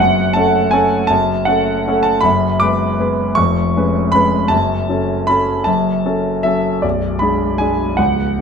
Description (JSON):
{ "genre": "classical, piano waltz", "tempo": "157 BPM", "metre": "3/4", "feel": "uneven beats, rubato", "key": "F# minor", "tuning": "A4 = 441 Hz", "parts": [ { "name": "clear grand piano", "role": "solo", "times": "0.0-8.4 s", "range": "B0 to D6", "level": "-13 LUFS", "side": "equal", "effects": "none" } ], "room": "moderate recital hall reverb, RT60 1.4 s", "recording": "close, detailed microphones", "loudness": "-13 LUFS", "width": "side -6 dB against mid", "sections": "0.0-8.4 A section", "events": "none", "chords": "0.0 F#m; 2.2 G#m7b5/F#; 3.4 C#7/E#; 4.5 F#m; 6.8 G#dim/B" }